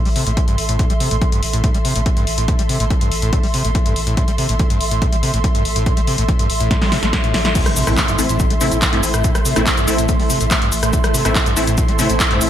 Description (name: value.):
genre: driving peak-time techno.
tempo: 142 BPM.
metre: 4/4.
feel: straight.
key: A minor.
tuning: A4 = 439 Hz.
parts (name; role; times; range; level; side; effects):
ethereal airy pad; texture; 0.0-12.5 s; A4 to C6; -23 LUFS; right 1 dB; ensemble chorus, built-in reverb, sidechain pumping.
screaming distorted acid line; riff; 0.1-12.4 s; G2 to A3; -22 LUFS; equal; distortion, analog chorus, sidechain pumping, digital delay.
saturated sub bass; bass; 0.1-12.5 s; A1; -23 LUFS; equal; sidechain pumping, low-pass filter.
punchy analog drum machine; drums; 0.1-12.5 s; crash cymbal, handclaps, hi-hat, rim click, shaker, snare drum; -21 LUFS; left 1 dB; gated reverb.
electronic kick drum; drums; 0.4-12.3 s; none; -18 LUFS; equal; none.
swarming drone; drone; 8.6-12.5 s; A2 to A3; -28 LUFS; right 2 dB; built-in reverb, lush chorus, sidechain pumping.
impact; sound effects; 7.6-9.2 s; none; -26 LUFS; equal; none.
rave stab; stabs; 7.9-12.5 s; A3 to E4; -21 LUFS; left 2 dB; chorus, built-in reverb, sidechain pumping, digital delay.
room: light reverb, digital ambience.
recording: bright 1980s-style digital production.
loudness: -14 LUFS.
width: side -11 dB against mid.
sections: 0.0-7.6 A section; 7.6-12.5 B section.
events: drum fill 6.7-7.6; drop 7.6-12.5; impact 7.6-9.2.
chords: 0.0 Am.